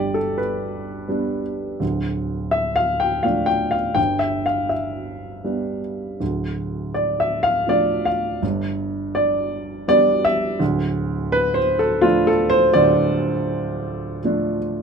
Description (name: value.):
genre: classical, lyrical solo piano.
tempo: 82 BPM.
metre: 3/4.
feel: rubato.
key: D dorian.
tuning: A4 = 440 Hz.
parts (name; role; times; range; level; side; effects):
dark baby grand piano; solo; 0.0-14.8 s; D1 to G5; -18 LUFS; equal; none.
room: light reverb.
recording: close, detailed microphones.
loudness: -18 LUFS.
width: side -6 dB against mid.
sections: 0.0-14.8 A section.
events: none.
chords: 0.0 G; 1.8 Dm; 4.0 G; 6.2 Dm; 8.4 G; 10.6 Dm.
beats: 0.38 1.11 | 1.82 2.53 3.25 | 3.98 4.71 5.46 | 6.21 6.95 7.69 | 8.43 9.17 9.89 | 10.60 11.31 12.03 | 12.75 13.48 14.23.